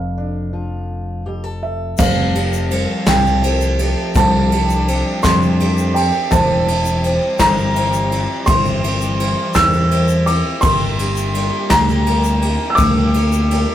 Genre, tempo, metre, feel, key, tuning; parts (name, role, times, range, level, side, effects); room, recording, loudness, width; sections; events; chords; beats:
indie folk with a building arrangement; 56 BPM (dotted quarters); 6/8; straight; F major; A4 = 445 Hz
felt-muted upright piano; melody; 0.0-13.7 s; E5 to E6; -19 LUFS; right 1 dB
fingerpicked steel-string acoustic guitar; accompaniment; 0.0-4.2 s; F2 to A4; -30 LUFS; equal
fingered electric bass; bass; 0.0-13.6 s; E1 to F2; -18 LUFS; equal
picked twelve-string acoustic guitar; accompaniment; 2.0-13.7 s; E3 to C5; -22 LUFS; left 1 dB
warm studio string section; sustained chords; 2.0-13.7 s; D3 to G4; -27 LUFS; left 1 dB
soft brush drum kit; drums; 2.0-13.7 s; crash cymbal, kick drum, ride cymbal, snare drum; -20 LUFS; equal
tube shaker; percussion; 2.0-13.6 s; -34 LUFS; left 7 dB
wet small room reverb, RT60 0.5 s; rough rehearsal-room recording, warm saturation; -14 LUFS; side -11 dB against mid
0.0-2.0 A section; 2.0-13.7 B section
0.0 Dm/F; 2.0 Fadd9; 6.3 C/E; 10.6 Gm
0.90 | 1.99 3.07 | 4.15 5.24 | 6.32 7.39 | 8.47 9.55 | 10.63 11.71 | 12.78